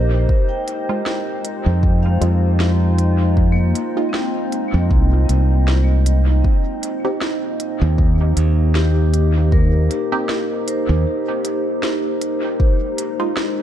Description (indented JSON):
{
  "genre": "ambient dub",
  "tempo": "78 BPM",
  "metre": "4/4",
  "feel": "swing 56% on 16ths",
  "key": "F minor",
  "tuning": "A4 = 440 Hz",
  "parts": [
    { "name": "warbly tape-like pad", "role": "sustained chords", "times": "0.0-13.6 s", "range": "Ab3 to Eb5", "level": "-23 LUFS", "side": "right 1 dB", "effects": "chorus, built-in reverb" },
    { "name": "vibraphone with hard mallets", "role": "arpeggios", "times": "0.0-13.6 s", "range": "Bb3 to G5", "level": "-26 LUFS", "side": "left 4 dB", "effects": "dub echo" },
    { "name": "modern bright fingered electric bass", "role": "bass", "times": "0.0-11.0 s", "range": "Bb1 to F2", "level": "-15 LUFS", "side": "equal", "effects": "tube saturation" },
    { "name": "electronic kick drum", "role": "drums", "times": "0.3-12.8 s", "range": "none", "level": "-16 LUFS", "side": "equal", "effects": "overdrive" },
    { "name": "organic electronic drum kit", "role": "drums", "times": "0.7-13.5 s", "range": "hi-hat, snare drum", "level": "-28 LUFS", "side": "equal", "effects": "dub echo" },
    { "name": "filtered dub chord stab", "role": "stabs", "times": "0.9-13.3 s", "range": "Ab3 to G4", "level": "-28 LUFS", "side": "right 3 dB", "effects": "phaser, dub echo" }
  ],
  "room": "light reverb",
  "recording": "none",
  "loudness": "-15 LUFS",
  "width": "side -10 dB against mid",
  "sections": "0.0-12.6 A section; 12.6-13.6 B section",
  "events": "break 11.1-12.6",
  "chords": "0.3 Fm7; 6.4 Eb6; 12.6 Fm7"
}